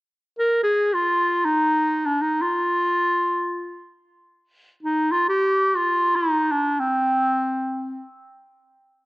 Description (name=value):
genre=Turkish makam ensemble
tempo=free time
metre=none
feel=none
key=F makam huseyni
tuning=A4 = 440 Hz
part: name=clear clarinet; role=solo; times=0.4-8.0 s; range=C4 to Bb4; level=-19 LUFS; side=equal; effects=cassette tape
room=wet spring reverb, RT60 2.2 s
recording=home recording on cassette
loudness=-19 LUFS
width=side -22 dB against mid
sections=0.0-9.1 A section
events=none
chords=none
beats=free time